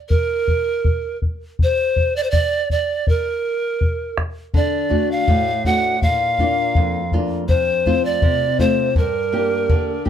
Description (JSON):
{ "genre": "andean folk, Andean ensemble", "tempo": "81 BPM", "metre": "2/4", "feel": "straight", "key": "G minor", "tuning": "A4 = 438 Hz", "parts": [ { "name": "breathy bright pan flute", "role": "melody", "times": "0.1-10.0 s", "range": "Bb4 to F#5", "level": "-19 LUFS", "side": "right 1 dB", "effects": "plate reverb" }, { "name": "bombo", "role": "percussion", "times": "0.1-10.1 s", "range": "none", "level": "-19 LUFS", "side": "left 1 dB", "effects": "none" }, { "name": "nylon-string guitar", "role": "accompaniment", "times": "4.5-10.1 s", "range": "F2 to G4", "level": "-21 LUFS", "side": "left 1 dB", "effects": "none" } ], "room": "light reverb", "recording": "none", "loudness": "-16 LUFS", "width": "side -9 dB against mid", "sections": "0.0-10.1 A section", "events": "none", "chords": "0.0 N.C.; 4.5 D; 6.0 Bb; 7.5 F; 9.0 Gm" }